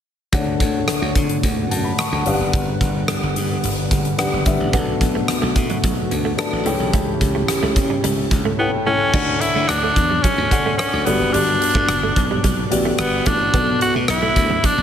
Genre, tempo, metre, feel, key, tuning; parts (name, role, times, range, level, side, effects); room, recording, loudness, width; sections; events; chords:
1980s-style pop; 109 BPM; 4/4; straight; D major; A4 = 440 Hz
dark grand piano; accompaniment; 0.3-14.8 s; G2 to C#6; -24 LUFS; left 3 dB; shimmer reverb
chorused pulse-width pad; sustained chords; 0.3-9.1 s; D3 to F#5; -25 LUFS; left 1 dB; shimmer reverb
glassy slap bass; bass; 0.3-14.8 s; F#1 to D3; -24 LUFS; equal
huge arena drum kit; drums; 0.3-14.8 s; crash cymbal, hi-hat, kick drum, rim click; -21 LUFS; equal
direct-recorded clean electric guitar; riff; 4.7-14.7 s; F#3 to D4; -28 LUFS; right 6 dB; ensemble chorus, ping-pong delay, shimmer reverb
raspy tenor saxophone; melody; 8.6-14.8 s; B3 to F#4; -19 LUFS; equal; shimmer reverb
moderate scoring stage reverb, RT60 1.4 s; -16 LUFS; side -9 dB against mid
0.3-9.1 A section; 9.1-14.8 B section
0.3 Dmaj7; 2.3 Gmaj7; 4.7 Bm7; 6.7 A7; 9.1 Dmaj7; 11.1 Gmaj7; 13.5 Bm7